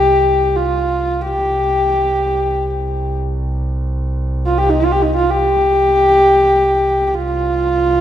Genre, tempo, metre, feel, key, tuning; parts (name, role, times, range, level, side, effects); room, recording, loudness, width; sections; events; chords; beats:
mongolian traditional, Mongolian folk; free time; A4 = 441 Hz
warm horsehead fiddle; melody; 0.0-8.0 s; Eb4 to G4; -13 LUFS; equal
rich double bass; drone; 0.0-8.0 s; C2; -21 LUFS; right 1 dB
moderate recital hall reverb, RT60 1.5 s; minimal, uncompressed stereo recording; -13 LUFS; side -10 dB against mid
0.0-8.0 A section
free time